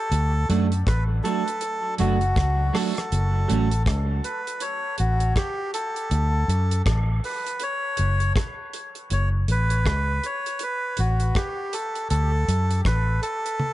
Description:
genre	dub reggae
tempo	80 BPM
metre	4/4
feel	swing 60% on 16ths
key	unclear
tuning	A4 = 442 Hz
part	melodica	melody	0.0-13.7 s	F#4 to C#5	-27 LUFS	equal	dub echo
part	vintage muted fingered electric bass	bass	0.1-13.2 s	F#1 to F#2	-21 LUFS	equal	none
part	damped 70s drum kit	drums	0.1-13.7 s	hi-hat, kick drum, rim click, toms	-27 LUFS	equal	none
part	semi-hollow electric guitar	accompaniment	0.5-3.7 s	F#3 to F#4	-27 LUFS	right 7 dB	wide subtle chorus, dub echo
room	light reverb, small room ambience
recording	echo-heavy mix, nothing above 10.9 kHz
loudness	-21 LUFS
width	side -15 dB against mid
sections	0.0-13.7 A section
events	none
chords	0.1 D; 3.1 F#m; 6.1 D; 9.1 F#m; 12.1 D

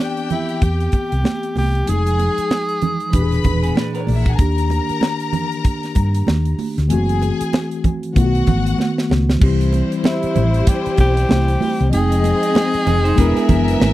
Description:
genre	lush 1970s-style soul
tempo	96 BPM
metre	4/4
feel	swing 58% on 16ths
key	unclear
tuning	A4 = 441 Hz
part	breathy tenor saxophone	melody	0.0-3.8, 10.1-13.9 s	D4 to Ab4	-22 LUFS	equal	none
part	warm studio string section	second line	0.0-13.9 s	G3 to B5	-26 LUFS	left 5 dB	none
part	mellow tine electric piano	accompaniment	0.0-13.9 s	A#2 to G5	-22 LUFS	left 1 dB	slow stereo tremolo
part	tight funk drum kit	drums	0.2-13.9 s	crash cymbal, hi-hat, kick drum, snare drum	-18 LUFS	equal	none
part	congas	percussion	0.3-13.9 s	none	-24 LUFS	right 6 dB	none
part	hollow-body short-scale fingered electric bass	bass	0.6-13.9 s	E1 to G2	-18 LUFS	equal	none
part	electric guitar through a small old amp	riff	3.6-4.4, 12.9-13.9 s	B3 to C5	-26 LUFS	right 5 dB	none
room	little or no reverb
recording	dry, close 1970s-style studio recording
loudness	-15 LUFS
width	side -15 dB against mid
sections	0.0-9.4 A section; 9.4-13.9 B section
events	drum fill 8.8-9.4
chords	0.0 Cmaj7; 1.9 Fm7; 3.1 E7#11; 4.4 Ebmaj7; 6.9 F#m7b5; 8.2 B7; 9.4 C; 11.9 Fm9; 13.2 E7#11

